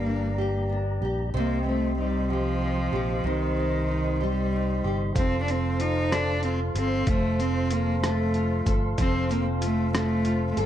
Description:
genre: six-eight pop ballad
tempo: 63 BPM (dotted quarters)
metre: 6/8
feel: straight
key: unclear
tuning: A4 = 438 Hz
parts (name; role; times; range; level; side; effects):
- warm cello; melody; 0.0-10.7 s; Eb3 to Eb4; -28 LUFS; equal; none
- nylon-string guitar; accompaniment; 0.0-10.7 s; G2 to A4; -30 LUFS; equal; double-tracked left and right
- mellow tonewheel organ; sustained chords; 0.0-10.7 s; G4 to C6; -33 LUFS; right 1 dB; fast rotary speaker
- fingered electric bass; bass; 0.0-10.7 s; F1 to C2; -28 LUFS; equal; none
- trip hop sampler-style drum kit; drums; 5.2-10.7 s; hi-hat, kick drum, rim click; -28 LUFS; equal; overdrive
room: light reverb, digital ambience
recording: dark, warm production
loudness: -23 LUFS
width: side -11 dB against mid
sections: 0.0-10.7 A section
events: none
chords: 0.0 Gm; 1.3 Cm; 5.2 F

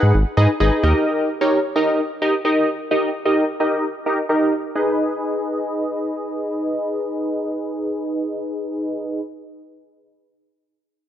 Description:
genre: synth-pop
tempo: 130 BPM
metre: 4/4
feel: straight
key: G# minor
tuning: A4 = 440 Hz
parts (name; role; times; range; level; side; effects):
- funky polysynth comp; accompaniment; 0.0-9.2 s; D#4 to F#5; -19 LUFS; equal; chorus, low-pass filter
- round analog bass; bass; 0.0-0.9 s; G#1 to G#2; -15 LUFS; equal; none
room: moderate concert hall reverb, RT60 2.0 s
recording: dark, warm production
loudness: -18 LUFS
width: side -10 dB against mid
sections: 0.0-4.8 A section; 4.8-8.4 B section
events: filter sweep on analog polysynth 0.0-4.8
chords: 0.0 G#m7; 0.8 D#; 4.8 G#m

